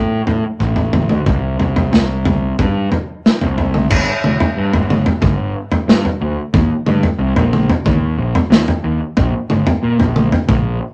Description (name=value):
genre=psychedelic rock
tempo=91 BPM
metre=4/4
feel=straight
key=unclear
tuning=A4 = 444 Hz
part: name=fuzz picked electric bass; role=bass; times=0.0-10.8 s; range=E1 to Bb2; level=-20 LUFS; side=equal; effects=overdrive
part: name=crunchy breakbeat drum kit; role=drums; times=0.3-10.6 s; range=crash cymbal, kick drum, snare drum, toms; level=-17 LUFS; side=equal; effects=none
room=wet small room reverb, RT60 0.6 s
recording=none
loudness=-16 LUFS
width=mono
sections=0.0-3.9 A section; 3.9-10.9 B section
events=none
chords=none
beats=0.61 | 1.27 1.93 2.59 3.25 | 3.91 4.57 5.23 5.89 | 6.54 7.20 7.86 8.52 | 9.18 9.83 10.49